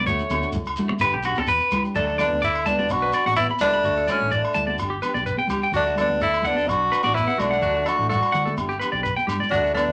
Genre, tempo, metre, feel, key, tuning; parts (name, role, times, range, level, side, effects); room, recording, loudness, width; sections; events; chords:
highlife guitar band; 127 BPM; 4/4; swing 53% on 16ths; D major; A4 = 440 Hz
picked steel-string acoustic guitar; accompaniment; 0.0-9.9 s; F#3 to G4; -36 LUFS; equal
clean electric guitar; arpeggios; 0.0-9.8 s; F#4 to B5; -27 LUFS; equal
hollow-body short-scale fingered electric bass; bass; 0.0-9.9 s; E1 to D3; -33 LUFS; equal
shekere; percussion; 0.1-9.9 s; -38 LUFS; equal
agogo bells; percussion; 0.3-9.9 s; -35 LUFS; equal
congas; percussion; 0.3-9.9 s; -33 LUFS; equal
bright tenor saxophone; melody; 2.0-9.9 s; C#4 to F#4; -24 LUFS; equal
breathy trombone; second line; 2.0-9.9 s; A3 to D4; -36 LUFS; equal
wet club reverb, RT60 0.7 s; -22 LUFS; mono
0.0-2.0 A section; 2.0-9.9 B section
clean electric guitar solo 0.0-2.0; drum fill 9.2-9.5
0.1 D; 1.0 G; 2.0 D; 2.9 Bm; 3.8 D; 4.8 G; 5.7 D; 6.7 Bm; 7.6 D; 8.6 G